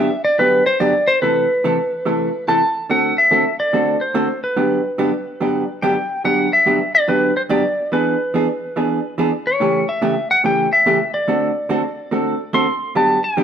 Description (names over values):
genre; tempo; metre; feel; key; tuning
country; 143 BPM; 4/4; swing 66% on 8ths; G major; A4 = 444 Hz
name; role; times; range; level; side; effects
clean lap steel guitar; melody; 0.0-13.4 s; B4 to C6; -17 LUFS; equal; none
vintage hollow-body jazz guitar; accompaniment; 0.0-13.4 s; G2 to A4; -19 LUFS; right 1 dB; none
room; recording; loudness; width
moderate stone room reverb, RT60 1.1 s; band playing live in one room; -15 LUFS; side -8 dB against mid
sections
0.0-6.2 A section; 6.2-13.4 A section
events
none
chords
0.0 Gmaj7; 1.2 C6; 2.9 D7; 4.6 Gmaj7; 7.9 E7; 9.6 A7; 11.3 D7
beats
0.39 0.81 | 1.22 1.64 2.06 2.48 | 2.90 3.32 3.74 4.16 | 4.57 4.99 5.41 5.83 | 6.25 6.67 7.09 7.51 | 7.92 8.34 8.76 9.18 | 9.60 10.02 10.44 10.86 | 11.28 11.70 12.12 12.54 | 12.95 13.37